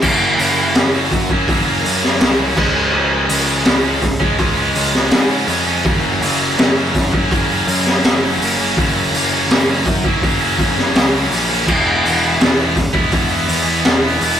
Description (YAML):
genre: quiet-loud alternative rock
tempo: 82 BPM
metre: 4/4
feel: straight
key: F# major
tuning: A4 = 440 Hz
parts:
  - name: heavy high-gain guitar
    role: riff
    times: 0.0-14.4 s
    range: F#2 to E4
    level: -17 LUFS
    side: equal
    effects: distortion
  - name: overdriven picked electric bass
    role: bass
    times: 0.0-14.4 s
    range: E1 to G#2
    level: -22 LUFS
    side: equal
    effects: none
  - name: raw garage drum kit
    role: drums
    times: 0.0-14.4 s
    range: crash cymbal, hi-hat, kick drum, snare drum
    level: -16 LUFS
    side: equal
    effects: none
room: light reverb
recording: rough rehearsal-room recording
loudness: -13 LUFS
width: side -9 dB against mid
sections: 0.0-14.4 A section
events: none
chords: 0.0 F#; 2.6 C#; 5.8 F#; 11.7 E